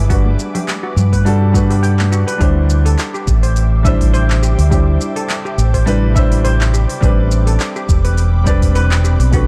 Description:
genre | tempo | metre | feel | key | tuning
sunset chillout | 104 BPM | 4/4 | swing 55% on 16ths | unclear | A4 = 440 Hz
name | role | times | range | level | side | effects
warm grand piano | accompaniment | 0.0-9.5 s | G3 to F#5 | -23 LUFS | equal | tape echo
ethereal airy pad | sustained chords | 0.0-9.5 s | C4 to D6 | -31 LUFS | equal | ensemble chorus, built-in reverb
deep dub fingered electric bass | bass | 0.0-9.5 s | E1 to G2 | -15 LUFS | equal | none
steel pan | arpeggios | 0.1-9.5 s | F#4 to G5 | -27 LUFS | equal | tape echo
deep house drum kit | drums | 0.1-9.5 s | handclaps, hi-hat, shaker | -28 LUFS | equal | studio reverb
electronic kick drum | drums | 0.1-9.5 s | none | -18 LUFS | equal | studio reverb
congas | percussion | 0.3-2.1 s | none | -28 LUFS | equal | none
room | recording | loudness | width
light reverb, small room reverb | dark, warm production | -14 LUFS | mono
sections
0.0-2.4 A section; 2.4-9.5 B section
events
none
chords
0.1 Gmaj7; 2.4 D9sus4; 7.0 Am11

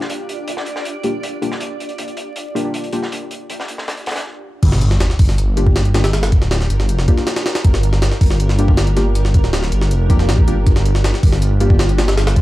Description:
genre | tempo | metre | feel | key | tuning
drum and bass, jungle | 159 BPM | 4/4 | straight | G minor | A4 = 440 Hz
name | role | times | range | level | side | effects
granular cloud pad | sustained chords | 0.0-12.4 s | D4 to D5 | -28 LUFS | right 1 dB | built-in reverb
crunchy breakbeat drum kit | drums | 0.0-4.2 s | hi-hat, snare drum | -27 LUFS | equal | high-pass filter on hats, high-pass filter on snare, high-pass filter on room
deep mellow chord stab | stabs | 1.0-3.0, 5.6-12.1 s | Bb3 to G4 | -24 LUFS | left 2 dB | chorus, dub echo
dark detuned saw bass | bass | 4.6-12.4 s | D1 to Bb1 | -15 LUFS | equal | none
jungle sampler-style drum kit | drums | 4.6-12.4 s | crash cymbal, hi-hat, kick drum, snare drum | -15 LUFS | equal | none
sub drop | sound effects | 4.6-6.1 s | none | -22 LUFS | equal | none
room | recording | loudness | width
little or no reverb | dark, warm production, vinyl crackle | -14 LUFS | side -17 dB against mid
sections
0.0-4.6 A section; 4.6-12.4 B section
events
stop 4.2-4.6; drop 4.6-12.4; impact 4.6-6.1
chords
0.0 Gm7

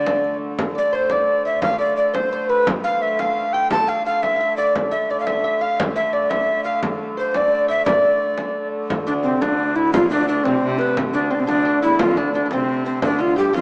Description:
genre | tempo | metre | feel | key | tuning
medieval dance | 116 BPM (dotted quarters) | 6/8 | straight | D minor | A4 = 436 Hz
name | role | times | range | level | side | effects
breathy tenor recorder | melody | 0.0-13.6 s | C4 to A5 | -21 LUFS | equal | none
clear viola da gamba | second line | 0.0-0.4, 9.1-13.6 s | D2 to D3 | -28 LUFS | equal | none
lute | second line | 0.0-13.6 s | B3 to G5 | -29 LUFS | equal | none
warm hurdy-gurdy | drone | 0.0-13.6 s | D3 to A3 | -32 LUFS | equal | none
frame drum | percussion | 0.1-13.6 s | none | -28 LUFS | equal | none
room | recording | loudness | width
wet lush hall reverb, RT60 2.4 s | rough home demo mix, small speaker sound | -20 LUFS | mono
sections
0.6-8.9 A section; 8.9-13.6 A section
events
none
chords
none

